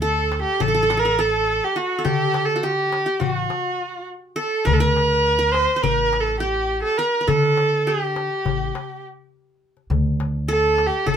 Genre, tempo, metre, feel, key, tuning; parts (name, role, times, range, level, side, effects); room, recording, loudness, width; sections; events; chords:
Turkish makam ensemble; 206 BPM (eighths); 9/8; straight; A4 = 436 Hz
clear kamancheh; melody; 0.0-11.2 s; F#4 to C5; -20 LUFS; right 2 dB
qanun; second line; 0.0-11.2 s; F#4 to C5; -27 LUFS; left 1 dB
upright bass; bass; 0.0-11.2 s; A1 to D3; -24 LUFS; equal
darbuka; percussion; 0.3-11.2 s; -27 LUFS; left 11 dB
light reverb; minimal, uncompressed stereo recording; -18 LUFS; side -8 dB against mid
0.0-11.2 A section